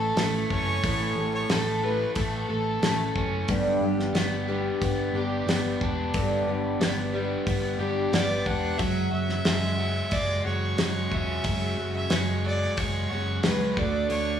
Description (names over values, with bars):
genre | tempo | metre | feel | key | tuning
folk rock and heartland rock | 90 BPM | 4/4 | straight | unclear | A4 = 440 Hz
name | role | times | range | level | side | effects
rich fiddle | melody | 0.0-3.3, 8.1-14.4 s | A4 to F#5 | -30 LUFS | equal | none
picked twelve-string acoustic guitar | accompaniment | 0.0-14.4 s | G2 to A4 | -30 LUFS | left 1 dB | none
overdriven electric guitar | riff | 0.0-14.4 s | G2 to A4 | -31 LUFS | equal | none
picked electric bass | bass | 0.0-14.4 s | E1 to D2 | -31 LUFS | right 1 dB | none
damped 70s drum kit | drums | 0.2-14.3 s | hi-hat, kick drum, snare drum | -28 LUFS | equal | none
room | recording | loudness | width
moderate large studio reverb, RT60 1.1 s | band playing live in one room, small room ambience | -24 LUFS | side -8 dB against mid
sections
0.0-14.4 A section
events
none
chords
0.0 A; 3.5 G; 8.8 F#sus2; 13.8 D